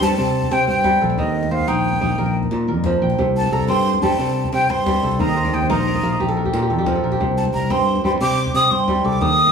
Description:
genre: west african traditional, West African string and xylophone music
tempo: 120 BPM (dotted quarters)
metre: 12/8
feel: straight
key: C dorian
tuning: A4 = 440 Hz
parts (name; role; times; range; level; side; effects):
- breathy jazz flute; melody; 0.0-9.5 s; Eb5 to Eb6; -20 LUFS; equal; none
- kora; arpeggios; 0.0-9.5 s; Bb2 to G5; -20 LUFS; right 2 dB; none
- modern bright fingered electric bass; bass; 0.0-9.5 s; Bb1 to C3; -22 LUFS; left 2 dB; none
- djembe; percussion; 0.0-9.5 s; none; -27 LUFS; left 1 dB; none
room: wet studio reverb, RT60 0.6 s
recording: band playing live in one room, small room ambience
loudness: -16 LUFS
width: side -6 dB against mid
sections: 0.0-9.5 A section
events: kora fill 5.2-7.2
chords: 0.0 C5; 1.2 Eb; 2.2 Bb5; 3.2 C5; 5.2 Eb5; 6.2 Bb5; 7.2 C5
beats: 0.17 0.68 | 1.18 1.68 2.18 2.69 | 3.19 3.69 4.19 4.70 | 5.20 5.70 6.20 6.70 | 7.21 7.71 8.21 8.71 | 9.21

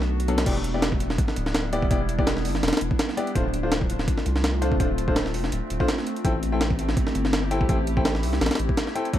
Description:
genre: drum and bass, jungle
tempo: 166 BPM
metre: 4/4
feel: swing 54% on 16ths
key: E minor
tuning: A4 = 441 Hz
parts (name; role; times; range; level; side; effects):
- warbly tape-like pad; sustained chords; 0.0-9.2 s; G3 to G4; -30 LUFS; left 1 dB; chorus, built-in reverb, phaser
- soft dub sub bass; bass; 0.0-9.2 s; D1 to C2; -27 LUFS; equal; none
- breakbeat sampler-style drum kit; drums; 0.0-9.2 s; crash cymbal, hi-hat, kick drum, snare drum; -24 LUFS; equal; none
- clear concert grand piano; stabs; 0.3-9.2 s; F#3 to G5; -29 LUFS; left 3 dB; dub echo
room: little or no reverb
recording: vinyl crackle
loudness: -21 LUFS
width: side -12 dB against mid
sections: 0.5-9.2 A section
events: break 0.0-0.5; drop 0.5-9.2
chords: 0.5 Em7; 3.4 Dm7; 6.2 Am7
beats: 0.10 | 0.46 0.82 1.18 1.55 | 1.91 2.27 2.63 2.99 | 3.35 3.71 4.08 4.44 | 4.80 5.16 5.52 5.88 | 6.24 6.61 6.97 7.33 | 7.69 8.05 8.41 8.77 | 9.14

